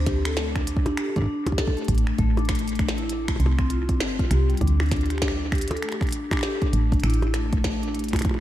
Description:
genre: IDM.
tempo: 99 BPM.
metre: 4/4.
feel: swing 62% on 16ths.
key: D minor.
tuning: A4 = 439 Hz.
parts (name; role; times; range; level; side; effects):
vibraphone with soft mallets; arpeggios; 0.0-8.4 s; G3 to A4; -28 LUFS; moving between left 7 dB and equal; auto-pan, tape echo, shimmer reverb.
woody FM bass; bass; 0.0-8.2 s; G1 to D2; -24 LUFS; right 1 dB; none.
electronic kick drum; drums; 0.1-8.4 s; none; -25 LUFS; right 1 dB; none.
glitchy drum kit; drums; 0.1-8.4 s; finger snaps, hi-hat, percussion blips, snare drum; -30 LUFS; equal; dub echo.
room: light reverb, digital ambience.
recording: echo-heavy mix.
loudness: -21 LUFS.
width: side -13 dB against mid.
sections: 0.0-8.4 A section.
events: none.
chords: 0.0 Dsus4; 1.9 Asus4; 3.4 Csus4; 4.6 Dsus4; 6.7 N.C..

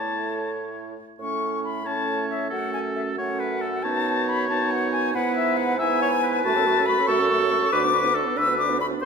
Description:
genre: quick classical-period movement for wind quintet.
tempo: 92 BPM (dotted quarters).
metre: 6/8.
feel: straight.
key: A major.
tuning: A4 = 441 Hz.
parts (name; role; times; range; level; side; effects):
concert flute; melody; 0.0-9.1 s; E5 to E6; -25 LUFS; left 5 dB; none.
warm oboe; second line; 0.0-9.1 s; A4 to E5; -27 LUFS; equal; none.
clear clarinet; accompaniment; 0.0-9.1 s; C#4 to A4; -30 LUFS; right 9 dB; none.
warm French horn; accompaniment; 0.0-9.1 s; A3 to D4; -30 LUFS; right 3 dB; none.
mellow bassoon; bass; 0.0-9.1 s; D2 to A2; -29 LUFS; right 3 dB; none.
room: wet recital hall reverb, RT60 1.6 s.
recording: minimal, uncompressed stereo recording.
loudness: -21 LUFS.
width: side -5 dB against mid.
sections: 0.0-1.2 A section; 1.2-9.1 B section.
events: none.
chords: 0.0 A; 2.5 F#m; 3.8 B7/F#; 5.1 E/G#; 6.4 F#m; 7.7 Bm/D.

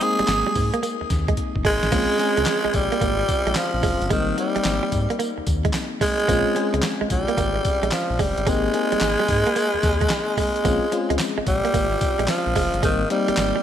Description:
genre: R&B, new jack swing.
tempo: 110 BPM.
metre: 4/4.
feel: swing 67% on 16ths.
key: Bb dorian.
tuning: A4 = 440 Hz.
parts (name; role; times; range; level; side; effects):
growling tenor saxophone; melody; 0.0-13.6 s; Eb3 to Ab4; -22 LUFS; right 1 dB; ping-pong delay.
FM electric piano; accompaniment; 0.0-13.6 s; G3 to Ab4; -27 LUFS; left 4 dB; chorus.
direct-recorded clean electric guitar; riff; 0.0-13.6 s; G3 to Bb3; -29 LUFS; right 6 dB; wide subtle chorus.
boom bap sampler-style drum kit; drums; 0.0-13.5 s; crash cymbal, handclaps, hi-hat, kick drum, snare drum, tambourine; -26 LUFS; equal; none.
round analog bass; bass; 0.2-13.5 s; Gb1 to Ab2; -26 LUFS; equal; none.
room: moderate lush hall reverb, RT60 2.2 s.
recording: bright 1980s-style digital production.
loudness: -19 LUFS.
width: side -10 dB against mid.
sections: 0.0-1.9 A section; 1.9-13.6 A section.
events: drum fill 1.4-1.9.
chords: 0.0 Abmaj7; 1.9 Bbm7; 4.1 Abmaj7; 6.3 Bbm7; 8.5 Abmaj7; 10.6 Bbm7; 12.8 Abmaj7.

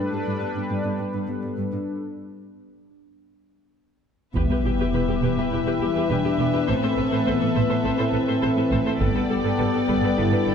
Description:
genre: cinematic, hybrid orchestral and electronic film score.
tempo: 103 BPM.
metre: 4/4.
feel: straight.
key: E minor.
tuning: A4 = 443 Hz.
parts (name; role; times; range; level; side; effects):
chorused pulse-width pad; sustained chords; 0.0-10.5 s; E3 to E5; -28 LUFS; right 1 dB; none.
harp-like synth pluck; arpeggios; 0.0-10.5 s; E3 to A4; -30 LUFS; left 4 dB; chorus, ping-pong delay.
warm symphonic cello section; bass; 0.0-10.5 s; E2 to A2; -30 LUFS; right 4 dB; none.
mellow French horn section; sustained chords; 4.3-10.5 s; B3 to E4; -24 LUFS; left 5 dB; none.
warm symphonic violin section; second line; 4.4-10.5 s; B4 to G5; -31 LUFS; left 5 dB; none.
warm symphonic viola section; accompaniment; 4.4-10.5 s; G4 to C5; -30 LUFS; right 1 dB; none.
warm symphonic double bass section; bass; 4.4-10.5 s; E1 to A1; -29 LUFS; right 5 dB; none.
taiko ensemble; drums; 4.4-5.5, 9.0-10.2 s; none; -30 LUFS; equal; none.
sub drop; sound effects; 4.4-6.7 s; none; -28 LUFS; right 1 dB; none.
room: moderate scoring stage reverb, RT60 2.0 s.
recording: dark, warm production.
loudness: -20 LUFS.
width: side -7 dB against mid.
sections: 0.0-4.4 A section; 4.4-10.5 B section.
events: build-up 0.0-4.4; break 2.0-4.4; impact 4.4-6.7.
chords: 0.0 Gadd9; 2.0 N.C.; 4.4 Em; 6.7 Amadd9; 9.0 Gadd9.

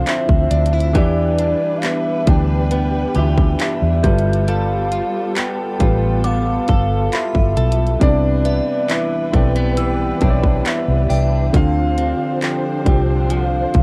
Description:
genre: contemporary R&B.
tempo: 68 BPM.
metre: 4/4.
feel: straight.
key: unclear.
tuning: A4 = 443 Hz.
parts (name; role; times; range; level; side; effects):
soft octave-layered synth lead; melody; 0.0-13.8 s; D5 to G5; -25 LUFS; equal; chorus, tremolo.
warm grand piano; accompaniment; 0.0-13.8 s; C3 to G5; -27 LUFS; equal; cassette tape.
muted studio string section; sustained chords; 0.0-13.8 s; E3 to C5; -30 LUFS; equal; cassette tape.
direct-recorded clean electric guitar; arpeggios; 0.0-13.8 s; D3 to A4; -26 LUFS; equal; analog chorus, cassette tape, analog delay.
glassy synth bell; texture; 0.0-11.9 s; E5 to G6; -35 LUFS; equal; chorus, cassette tape, analog delay.
trap drum kit; drums; 0.1-13.8 s; handclaps, hi-hat, kick drum; -20 LUFS; equal; cassette tape.
vintage muted fingered electric bass; bass; 0.3-13.8 s; G1 to E2; -20 LUFS; equal; none.
room: little or no reverb.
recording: home recording on cassette.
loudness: -17 LUFS.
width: mono.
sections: 0.0-13.8 A section.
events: none.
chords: 0.0 Dm9; 1.0 Em7; 4.0 G9; 8.0 Cmaj9; 11.5 Dm9.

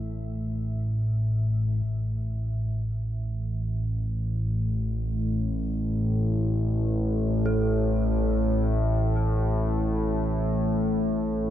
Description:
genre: ambient.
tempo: free time.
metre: none.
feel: none.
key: unclear.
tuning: A4 = 439 Hz.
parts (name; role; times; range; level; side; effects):
deep dark ambient pad; sustained chords; 0.0-1.9 s; A3 to E5; -48 LUFS; left 1 dB; chorus, built-in reverb.
dark detuned synth bell; arpeggios; 0.0-11.5 s; A4; -38 LUFS; right 3 dB; chorus, analog delay.
analog drone; drone; 0.0-11.5 s; A1 to A2; -24 LUFS; equal; chorus.
room: wet huge ambient reverb, RT60 7.5 s.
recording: dreamy mix soaked in reverb.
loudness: -24 LUFS.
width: side -11 dB against mid.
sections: 0.0-1.8 A section; 1.8-11.5 B section.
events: none.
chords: 0.0 A5; 1.8 N.C..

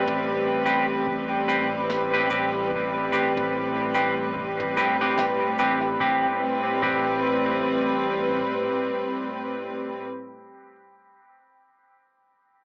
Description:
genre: ambient dub.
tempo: 73 BPM.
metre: 4/4.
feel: swing 59% on 16ths.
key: A minor.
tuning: A4 = 441 Hz.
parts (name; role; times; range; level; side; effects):
clear studio string section; sustained chords; 0.0-10.1 s; A2 to B4; -25 LUFS; equal; cassette tape.
semi-hollow electric guitar; stabs; 0.0-10.8 s; C4 to B4; -24 LUFS; equal; spring reverb, cassette tape, dub echo.
soft dub sub bass; bass; 0.0-8.4 s; E1 to A1; -40 LUFS; equal; none.
soft brush drum kit; drums; 0.1-5.8 s; shaker, snare drum, toms; -40 LUFS; equal; none.
electronic kick drum; drums; 1.1-7.1 s; none; -43 LUFS; equal; none.
room: moderate booth ambience, RT60 0.2 s.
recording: home recording on cassette, AM radio sound.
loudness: -21 LUFS.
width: side -33 dB against mid.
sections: 0.0-6.0 A section; 6.0-9.3 B section.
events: none.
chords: 0.0 Am9.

